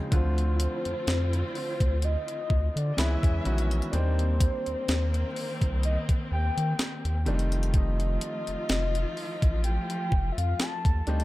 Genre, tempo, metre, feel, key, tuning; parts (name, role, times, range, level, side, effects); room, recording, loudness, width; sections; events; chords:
contemporary R&B; 63 BPM; 4/4; swing 54% on 16ths; A4 = 440 Hz
clear concert grand piano; accompaniment; 0.0-11.2 s; Db3 to F#4; -35 LUFS; equal
warm studio string section; sustained chords; 0.0-11.2 s; Db3 to Fb5; -38 LUFS; left 1 dB
soft octave-layered synth lead; melody; 0.1-11.2 s; C5 to A5; -34 LUFS; left 1 dB; chorus, phaser
saturated sub bass; bass; 0.1-11.2 s; F1 to Eb3; -26 LUFS; equal
clean 12-bit digital drum machine; drums; 0.1-11.2 s; hi-hat, kick drum, snare drum; -27 LUFS; equal
digital ambience; -25 LUFS; side -17 dB against mid
0.0-11.2 A section
0.1 Dm7; 3.0 Dbm7; 3.9 Cm7/Eb; 7.3 F9